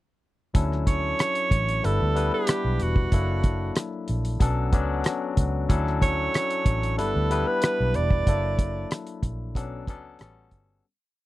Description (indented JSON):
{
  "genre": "lush 1970s-style soul",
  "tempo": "93 BPM",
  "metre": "4/4",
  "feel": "straight",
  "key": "D major",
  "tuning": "A4 = 440 Hz",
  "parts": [
    { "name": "barky tine electric piano", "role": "accompaniment", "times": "0.5-10.9 s", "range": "F#3 to B4", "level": "-29 LUFS", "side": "left 5 dB", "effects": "none" },
    { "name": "cloth-damped thuddy drum kit", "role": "drums", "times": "0.5-10.7 s", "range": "hi-hat, kick drum, rim click", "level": "-24 LUFS", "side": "equal", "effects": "none" },
    { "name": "vintage muted fingered electric bass", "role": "bass", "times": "0.6-10.8 s", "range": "E1 to D2", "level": "-26 LUFS", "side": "equal", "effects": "none" },
    { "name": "bright alto saxophone", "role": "melody", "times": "0.9-8.9 s", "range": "F#4 to D5", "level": "-27 LUFS", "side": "right 4 dB", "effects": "none" }
  ],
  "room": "little or no reverb",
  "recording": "dry, close 1970s-style studio recording",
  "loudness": "-22 LUFS",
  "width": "side -17 dB against mid",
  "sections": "0.5-10.8 verse",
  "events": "fade-out 8.3-10.8",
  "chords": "0.5 Dmaj9; 1.8 G6; 3.1 F#7alt; 4.4 Bm9; 5.7 Dmaj9; 7.0 G6; 8.3 F#7alt; 9.6 Bm9; 10.2 A13"
}